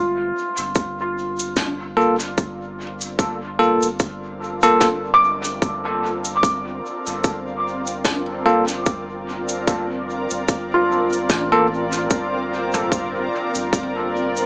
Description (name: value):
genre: ambient dub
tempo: 74 BPM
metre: 4/4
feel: swing 56% on 16ths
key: G minor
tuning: A4 = 440 Hz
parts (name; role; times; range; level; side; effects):
- granular cloud pad; sustained chords; 0.3-14.5 s; C4 to E5; -26 LUFS; equal; built-in reverb
- felt-muted upright piano; arpeggios; 0.0-14.5 s; F4 to D6; -22 LUFS; equal; dub echo
- soft dub sub bass; bass; 0.0-14.5 s; G1 to A1; -33 LUFS; equal; none
- jazz brush drum kit; drums; 0.6-14.5 s; cabasa, snare drum, toms; -27 LUFS; equal; dub echo
- electronic kick drum; drums; 0.8-13.9 s; none; -20 LUFS; equal; none
- bell-like tine electric piano; stabs; 2.0-11.7 s; Bb3 to A4; -20 LUFS; equal; dub echo
room: light reverb, small room ambience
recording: echo-heavy mix, small speaker sound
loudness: -18 LUFS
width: side -30 dB against mid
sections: 0.0-14.5 A section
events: fade-in on ambient pad 0.0-14.5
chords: 0.0 Gm9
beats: 0.75 1.56 | 2.38 3.19 4.00 4.81 | 5.62 6.43 7.24 8.05 | 8.86 9.67 10.48 11.29 | 12.11 12.92 13.73